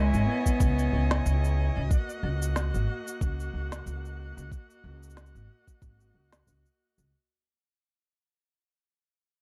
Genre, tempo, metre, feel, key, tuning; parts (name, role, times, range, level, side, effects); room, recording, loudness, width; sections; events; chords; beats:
folktronica; 92 BPM; 4/4; swing 56% on 16ths; A4 = 440 Hz
warm cello; melody; 0.0-1.5 s; G#3 to B3; -33 LUFS; equal; vintage 12-bit sampler grit, digital delay, plate reverb
warm string quartet; sustained chords; 0.0-7.1 s; A#3 to G#5; -39 LUFS; equal; plate reverb
upright bass; bass; 0.0-7.1 s; G#1 to C#2; -31 LUFS; equal; tube saturation
electronic cabasa and snare drum; drums; 0.1-7.1 s; -38 LUFS; equal
electronic kick drum; drums; 0.5-6.0 s; -28 LUFS; equal
light reverb; dark, warm production; -28 LUFS; mono
0.0-7.1 A section
fade-out 0.0-7.1
0.0 C#madd9; 1.9 D#m
0.60 1.25 | 1.90 2.56 3.21 3.86 | 4.51 5.16 5.82 6.47